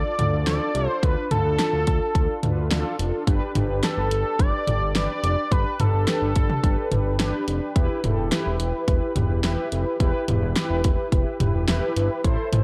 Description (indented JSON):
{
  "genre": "synth-pop",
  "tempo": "107 BPM",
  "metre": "4/4",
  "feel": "straight",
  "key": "unclear",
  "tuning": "A4 = 444 Hz",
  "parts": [
    { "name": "unison lead", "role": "melody", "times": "0.0-7.5 s", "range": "A4 to D5", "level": "-28 LUFS", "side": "equal", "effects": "slapback echo" },
    { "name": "mellow synth brass", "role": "accompaniment", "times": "0.0-12.6 s", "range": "D4 to C5", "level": "-30 LUFS", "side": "equal", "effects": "chorus" },
    { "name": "fat analog bass", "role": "bass", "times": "0.0-12.6 s", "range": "E1 to D2", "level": "-27 LUFS", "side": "equal", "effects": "none" },
    { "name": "pop drum kit", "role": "drums", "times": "0.2-12.6 s", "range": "hi-hat, kick drum, snare drum, toms", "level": "-26 LUFS", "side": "equal", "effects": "none" }
  ],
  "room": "light reverb",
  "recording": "dark, warm production",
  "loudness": "-23 LUFS",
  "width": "mono",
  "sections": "0.0-12.6 A section",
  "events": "none",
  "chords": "0.0 Dm; 3.3 Gadd9; 7.8 Em",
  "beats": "0.47 | 1.03 1.59 2.15 2.71 | 3.27 3.83 4.39 4.96 | 5.52 6.08 6.64 7.20 | 7.76 8.32 8.88 9.44 | 10.00 10.56 11.12 11.69 | 12.24"
}